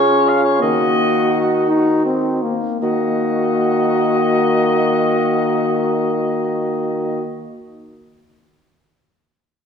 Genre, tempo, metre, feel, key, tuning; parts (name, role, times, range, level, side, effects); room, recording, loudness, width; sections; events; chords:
classical, renaissance-style consort dance; 52-59 BPM (dotted quarters); 6/8; straight; Eb minor; A4 = 440 Hz
warm oboe; melody; 0.0-7.2 s; Db5 to F5; -22 LUFS; left 3 dB
mellow alto recorder; second line; 0.0-7.2 s; F4 to Gb4; -20 LUFS; right 2 dB
clear trombone; accompaniment; 0.0-7.2 s; Bb3 to Eb4; -20 LUFS; left 4 dB
mellow bassoon; bass; 0.0-7.2 s; Db3 to Eb3; -21 LUFS; right 1 dB
wet recital hall reverb, RT60 1.8 s; dark, warm production; -15 LUFS; side -7 dB against mid
0.0-2.8 A section; 2.8-7.4 B section
slowing down 0.0-2.8
0.0 Db; 0.6 Ebm